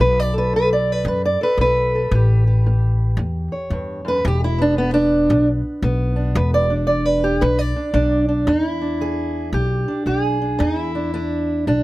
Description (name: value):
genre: acoustic country blues, solo or duo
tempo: 113 BPM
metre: 4/4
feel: swing 62% on 8ths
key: unclear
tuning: A4 = 440 Hz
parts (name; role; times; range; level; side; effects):
- fingerpicked steel-string acoustic guitar; melody; 0.0-11.8 s; E2 to D5; -19 LUFS; right 1 dB; none
- upright bass; bass; 0.0-11.8 s; E1 to F#2; -20 LUFS; equal; none
room: little or no reverb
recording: none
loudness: -16 LUFS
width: side -18 dB against mid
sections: 0.0-8.5 A section; 8.5-11.8 B section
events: steel-string acoustic guitar solo 0.0-8.5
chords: 0.0 B7(no3); 2.1 A7; 4.2 E5; 8.5 E7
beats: | 0.01 0.54 1.07 1.60 | 2.12 2.65 3.18 3.71 | 4.24 4.77 5.30 5.83 | 6.36 6.89 7.42 7.95 | 8.48 9.02 9.55 10.08 | 10.61 11.15 11.68